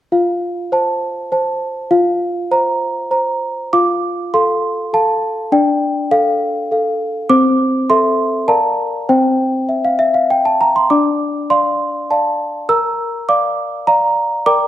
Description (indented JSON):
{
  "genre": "classical, lullaby for celesta",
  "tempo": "101 BPM",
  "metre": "3/4",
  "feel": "straight",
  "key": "F major",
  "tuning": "A4 = 441 Hz",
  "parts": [
    { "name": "small celesta", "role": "solo", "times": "0.1-14.7 s", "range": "C4 to E6", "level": "-14 LUFS", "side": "equal", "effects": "none" }
  ],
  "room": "moderate scoring stage reverb, RT60 1.5 s",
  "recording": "dark, warm production",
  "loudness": "-14 LUFS",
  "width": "side -12 dB against mid",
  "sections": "0.1-3.7 A section; 3.7-14.7 B section",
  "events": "none",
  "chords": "0.1 F; 1.9 Fsus4; 3.7 F; 5.5 Dm; 7.3 Am/C; 8.5 Bb; 9.1 C; 10.9 Dm; 12.7 Bb"
}